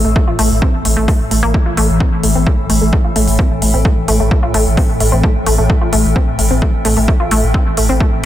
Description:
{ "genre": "driving peak-time techno", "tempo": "130 BPM", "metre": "4/4", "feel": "straight", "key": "unclear", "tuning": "A4 = 440 Hz", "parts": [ { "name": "resonant blip pluck", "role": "riff", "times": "0.0-8.1 s", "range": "A3 to F4", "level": "-18 LUFS", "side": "equal", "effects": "chorus, sidechain pumping, dub echo" }, { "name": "warm sub bass", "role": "bass", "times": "0.0-8.2 s", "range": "A1", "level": "-16 LUFS", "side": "equal", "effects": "overdrive, sidechain pumping, low-pass filter" }, { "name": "swarming drone", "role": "drone", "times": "0.0-8.3 s", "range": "A2 to E3", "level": "-20 LUFS", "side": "left 1 dB", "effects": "built-in reverb, sidechain pumping" }, { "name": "warbly tape-like pad", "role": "texture", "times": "0.0-8.3 s", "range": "A3 to E6", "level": "-26 LUFS", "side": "equal", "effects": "chorus, built-in reverb, sidechain pumping" }, { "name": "electronic kick drum", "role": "drums", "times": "0.2-8.1 s", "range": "none", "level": "-14 LUFS", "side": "equal", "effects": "studio reverb" }, { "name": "electronic hi-hat", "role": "drums", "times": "0.4-7.9 s", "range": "none", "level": "-20 LUFS", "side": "left 1 dB", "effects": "studio reverb" } ], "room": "light reverb", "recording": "dense, heavily limited modern master", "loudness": "-11 LUFS", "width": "side -12 dB against mid", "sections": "0.0-8.3 A section", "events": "filter sweep on synth arpeggio sound 0.0-8.3", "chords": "0.0 A5" }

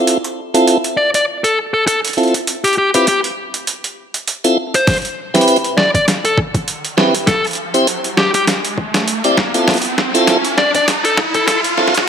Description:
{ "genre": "glitch hop", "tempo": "100 BPM", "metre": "4/4", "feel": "swing 56% on 16ths", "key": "unclear", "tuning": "A4 = 441 Hz", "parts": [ { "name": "tonewheel organ", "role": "stabs", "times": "0.0-11.9 s", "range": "C4 to D5", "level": "-16 LUFS", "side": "right 1 dB", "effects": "overdrive, slow rotary speaker, sidechain pumping, low-pass filter, tape echo" }, { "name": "boom bap sampler-style drum kit", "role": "drums", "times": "0.1-12.1 s", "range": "hi-hat, snare drum", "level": "-18 LUFS", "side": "right 1 dB", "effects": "overdrive, small room reverb" }, { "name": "dark smooth lead guitar", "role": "melody", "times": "1.0-11.6 s", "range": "G4 to D5", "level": "-16 LUFS", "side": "left 1 dB", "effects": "overdrive, tape echo" }, { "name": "electronic kick drum", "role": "drums", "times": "4.9-11.5 s", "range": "none", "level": "-20 LUFS", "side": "equal", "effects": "overdrive, small room reverb" }, { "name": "riser", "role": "sound effects", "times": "6.2-12.1 s", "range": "none", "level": "-21 LUFS", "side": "equal", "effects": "none" } ], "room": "moderate lush hall reverb, RT60 2.2 s", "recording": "high-pass filter", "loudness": "-13 LUFS", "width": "side -8 dB against mid", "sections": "0.0-12.1 A section", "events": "build-up 0.0-12.1; filter sweep on tonewheel organ 0.0-12.1; drum fill 4.9-12.1; riser 6.2-12.1", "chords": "0.1 C6; 4.9 Am9 (rootless); 9.7 C6" }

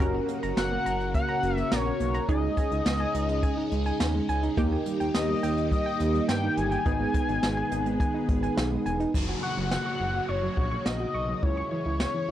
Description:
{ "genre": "synth-pop", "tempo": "105 BPM", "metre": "4/4", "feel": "straight", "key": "unclear", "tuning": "A4 = 440 Hz", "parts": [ { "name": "funky polysynth comp", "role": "accompaniment", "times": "0.0-9.1 s", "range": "A#3 to A#4", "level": "-30 LUFS", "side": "right 1 dB", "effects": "chorus" }, { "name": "string machine, full ensemble", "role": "sustained chords", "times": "0.0-12.3 s", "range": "C#3 to G#4", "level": "-35 LUFS", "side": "left 1 dB", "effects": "phaser, ensemble chorus" }, { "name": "soft round pluck", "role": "arpeggios", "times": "0.0-12.3 s", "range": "E3 to C#6", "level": "-33 LUFS", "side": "right 2 dB", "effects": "chorus, tape echo" }, { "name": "smooth synth bass", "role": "bass", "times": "0.0-12.3 s", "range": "E1 to G2", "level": "-31 LUFS", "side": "equal", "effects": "none" }, { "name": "jazz brush drum kit", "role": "drums", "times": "0.0-12.1 s", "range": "crash cymbal, hi-hat, kick drum, snare drum", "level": "-29 LUFS", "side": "equal", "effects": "none" }, { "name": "octave-doubled lead", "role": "melody", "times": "0.6-12.3 s", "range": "C#5 to G#5", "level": "-31 LUFS", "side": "left 3 dB", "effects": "chorus" }, { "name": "downlifter", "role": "sound effects", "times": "9.1-12.3 s", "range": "none", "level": "-39 LUFS", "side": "left 1 dB", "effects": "none" } ], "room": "small room ambience", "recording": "dry, gritty hardware recording, cassette tape", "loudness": "-24 LUFS", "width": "side -12 dB against mid", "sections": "0.0-9.1 A section; 9.1-12.3 B section", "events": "none", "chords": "0.0 F#; 2.3 C#sus2; 4.6 D#; 6.9 G#m; 9.1 F#; 11.4 C#m" }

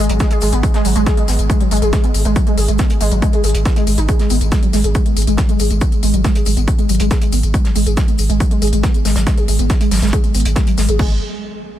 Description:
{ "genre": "driving peak-time techno", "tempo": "139 BPM", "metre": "4/4", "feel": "straight", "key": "G# minor", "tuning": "A4 = 441 Hz", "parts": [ { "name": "warbly dusty pluck", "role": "riff", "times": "0.0-11.2 s", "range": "F#3 to G#4", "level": "-19 LUFS", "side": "equal", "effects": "tube saturation, ensemble chorus, sidechain pumping, tape echo" }, { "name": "saturated sub bass", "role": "bass", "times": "0.0-11.2 s", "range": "G#1", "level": "-18 LUFS", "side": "equal", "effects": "sidechain pumping, low-pass filter" }, { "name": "electronic hi-hat and tambourine", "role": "drums", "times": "0.0-11.0 s", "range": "none", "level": "-26 LUFS", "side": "left 3 dB", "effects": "overdrive, sidechain pumping on hats, sidechain pumping on perc" }, { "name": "cloth-damped thuddy drum kit", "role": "drums", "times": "0.1-10.9 s", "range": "hi-hat, shaker, snare drum", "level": "-31 LUFS", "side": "right 1 dB", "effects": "high-pass filter on hats, high-pass filter on snare, high-pass filter on perc, high-pass filter on room" }, { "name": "techno drum kit", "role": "drums", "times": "0.2-11.1 s", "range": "crash cymbal, kick drum", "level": "-15 LUFS", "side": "equal", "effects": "overdrive" } ], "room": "light reverb, small room ambience", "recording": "none", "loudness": "-13 LUFS", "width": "side -12 dB against mid", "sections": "0.0-11.0 A section", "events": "filter sweep on synth arpeggio sound 0.0-11.0", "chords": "none" }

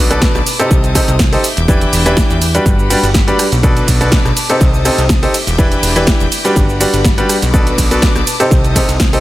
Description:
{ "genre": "piano house", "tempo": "123 BPM", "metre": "4/4", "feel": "swing 53% on 16ths", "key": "unclear", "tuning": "A4 = 439 Hz", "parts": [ { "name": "clear studio violin section", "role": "sustained chords", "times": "0.0-9.2 s", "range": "G4 to G6", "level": "-22 LUFS", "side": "left 4 dB", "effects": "sidechain pumping" }, { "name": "bright grand piano", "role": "riff", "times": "0.0-9.2 s", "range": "B2 to C5", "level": "-15 LUFS", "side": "equal", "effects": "sidechain pumping, ping-pong delay" }, { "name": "plucky analog bass", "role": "bass", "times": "0.0-9.2 s", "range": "E1 to E2", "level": "-16 LUFS", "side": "equal", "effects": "sidechain pumping" }, { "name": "punchy analog drum machine", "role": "drums", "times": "0.1-9.2 s", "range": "hi-hat, ride cymbal, rim click, shaker, snare drum", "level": "-18 LUFS", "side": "right 1 dB", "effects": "overdrive" }, { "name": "electronic kick drum", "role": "drums", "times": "0.2-9.1 s", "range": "none", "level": "-13 LUFS", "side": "equal", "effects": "none" } ], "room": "digital ambience", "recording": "none", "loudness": "-10 LUFS", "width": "side -16 dB against mid", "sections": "0.0-9.2 A section", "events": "none", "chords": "0.0 Bm7; 0.7 Cm6; 1.4 Em7; 2.7 Gmaj7; 3.6 Bm7; 4.6 Cm6; 5.3 Em7; 6.6 Gmaj7; 7.5 Bm7; 8.5 Cm6" }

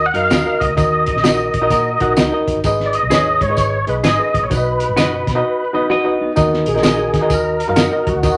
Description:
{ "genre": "uptempo 1960s-style soul", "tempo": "129 BPM", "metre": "4/4", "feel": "swing 64% on 8ths", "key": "Eb minor", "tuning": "A4 = 440 Hz", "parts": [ { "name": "tonewheel organ", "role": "melody", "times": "0.0-8.4 s", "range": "Gb4 to Gb5", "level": "-21 LUFS", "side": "equal", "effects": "overdrive, chorus vibrato, slow rotary speaker" }, { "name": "barky reed electric piano", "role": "accompaniment", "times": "0.0-8.4 s", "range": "Ab2 to Gb5", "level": "-21 LUFS", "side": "equal", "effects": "overdrive" }, { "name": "vintage muted fingered electric bass", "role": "bass", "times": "0.0-8.4 s", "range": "Gb1 to Eb3", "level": "-26 LUFS", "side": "equal", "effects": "none" }, { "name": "cloth-damped thuddy drum kit", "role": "drums", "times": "0.1-8.4 s", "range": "hi-hat, kick drum, snare drum", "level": "-21 LUFS", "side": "equal", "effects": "none" }, { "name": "clean electric guitar", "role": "stabs", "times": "0.3-7.9 s", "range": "Gb4 to Eb5", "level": "-24 LUFS", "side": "equal", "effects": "spring reverb" }, { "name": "tambourine", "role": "percussion", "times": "0.3-8.4 s", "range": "none", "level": "-35 LUFS", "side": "equal", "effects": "none" }, { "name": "clean electric guitar", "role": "riff", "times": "1.7-2.6, 5.7-6.7 s", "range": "B3 to Bb4", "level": "-25 LUFS", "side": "equal", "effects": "none" } ], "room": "wet studio ambience, RT60 0.5 s", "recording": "none", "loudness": "-16 LUFS", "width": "mono", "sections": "0.0-6.4 A section; 6.4-8.4 B section", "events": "none", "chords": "0.0 Ebm; 2.6 Abm; 4.5 B; 6.4 Ebm" }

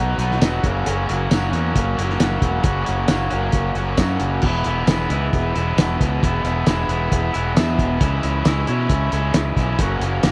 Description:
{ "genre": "indie rock", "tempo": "134 BPM", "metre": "4/4", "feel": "straight", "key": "F# mixolydian", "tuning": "A4 = 440 Hz", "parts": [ { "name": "raw garage guitar", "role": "riff", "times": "0.0-10.3 s", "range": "E2 to F#4", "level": "-24 LUFS", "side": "equal", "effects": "overdrive" }, { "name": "growling fingered electric bass", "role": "bass", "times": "0.0-10.3 s", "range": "E1 to B2", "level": "-25 LUFS", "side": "equal", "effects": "overdrive" }, { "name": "cloth-damped thuddy drum kit", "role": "drums", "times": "0.2-10.3 s", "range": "crash cymbal, hi-hat, kick drum, snare drum, tambourine", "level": "-23 LUFS", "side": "equal", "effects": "none" } ], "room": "light reverb, small room ambience", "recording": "worn, warbling old tape, cassette tape, warbly pitch drift", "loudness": "-20 LUFS", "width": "mono", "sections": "0.0-10.3 A section", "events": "none", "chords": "0.0 B; 0.6 F#; 4.4 E; 8.0 C#m; 9.8 F#" }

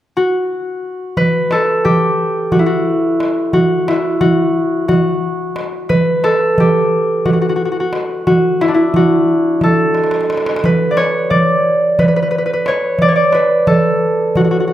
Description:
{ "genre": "Turkish makam ensemble", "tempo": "178 BPM (eighths)", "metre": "7/8", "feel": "straight", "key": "unclear", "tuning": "A4 = 440 Hz", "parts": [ { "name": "concert harp", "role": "melody", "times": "0.2-14.7 s", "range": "D4 to D5", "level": "-13 LUFS", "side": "equal", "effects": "none" }, { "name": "darbuka", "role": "percussion", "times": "1.2-14.5 s", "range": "none", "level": "-17 LUFS", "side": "right 1 dB", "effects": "none" } ], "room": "moderate recital hall reverb, RT60 1.7 s", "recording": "none", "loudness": "-12 LUFS", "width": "side -12 dB against mid", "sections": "0.0-1.2 A section; 1.2-14.7 B section", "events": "drum fill 10.0-10.6", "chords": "none" }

